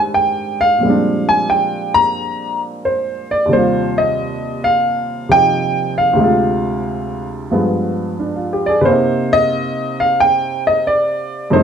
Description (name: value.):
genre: solo jazz.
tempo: 90 BPM.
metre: 4/4.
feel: swing 69% on 8ths.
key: Eb major.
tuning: A4 = 444 Hz.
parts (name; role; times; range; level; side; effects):
warm upright piano; solo; 0.0-11.6 s; D2 to Bb5; -14 LUFS; equal; none.
room: light reverb.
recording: dark, warm production.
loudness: -14 LUFS.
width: side -8 dB against mid.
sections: 0.0-8.9 A section; 8.9-11.6 B section.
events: none.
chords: 0.0 Abmaj7; 0.8 Bb13; 3.5 Eb69; 6.2 Dm7b5; 7.5 G7b9; 8.9 Cm9.